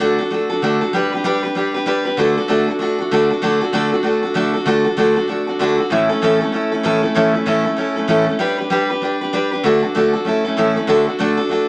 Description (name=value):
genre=rock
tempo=193 BPM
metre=4/4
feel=swing 62% on 8ths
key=D major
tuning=A4 = 440 Hz
part: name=picked steel-string acoustic guitar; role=solo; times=0.0-11.7 s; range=A2 to B4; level=-14 LUFS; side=equal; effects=digital delay
room=light reverb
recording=small speaker sound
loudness=-14 LUFS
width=side -25 dB against mid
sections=0.0-10.9 A section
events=none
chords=0.0 D; 0.9 G; 2.2 D; 5.9 A; 8.4 G; 9.6 D; 10.3 A; 10.9 D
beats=0.00 0.31 0.62 | 0.94 1.25 1.56 1.87 | 2.18 2.49 2.80 3.11 | 3.42 3.73 4.05 4.36 | 4.67 4.98 5.29 5.60 | 5.91 6.22 6.53 6.84 | 7.16 7.47 7.78 8.09 | 8.40 8.71 9.02 9.33 | 9.64 9.95 10.26 10.57 | 10.88 11.19 11.51